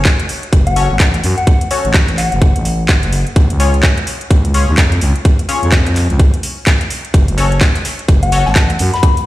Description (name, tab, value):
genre	bass house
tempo	127 BPM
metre	4/4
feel	swing 60% on 16ths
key	unclear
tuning	A4 = 440 Hz
part	growling FM bass	bass	0.0-8.9 s	F#1 to F#2	-14 LUFS	equal	sidechain pumping
part	electronic kick drum	drums	0.1-9.1 s	none	-10 LUFS	equal	overdrive
part	house drum kit	drums	0.1-9.2 s	handclaps, hi-hat	-19 LUFS	equal	overdrive
part	soft synth bell	melody	0.7-2.7, 8.2-9.1 s	F#5 to B5	-20 LUFS	left 4 dB	chorus, phaser, dub echo
part	band-passed chord stab	stabs	0.8-8.5 s	C#4 to C#5	-22 LUFS	left 4 dB	chorus, sidechain pumping, dub echo
part	tight metal drum kit	drums	7.1-9.3 s	hi-hat, snare drum	-30 LUFS	right 3 dB	none
room	light reverb, digital ambience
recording	played on a big sound system in a bare room, stone room reverb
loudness	-11 LUFS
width	side -16 dB against mid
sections	0.0-9.3 A section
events	none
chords	0.0 F#m; 3.4 C#; 7.1 F#m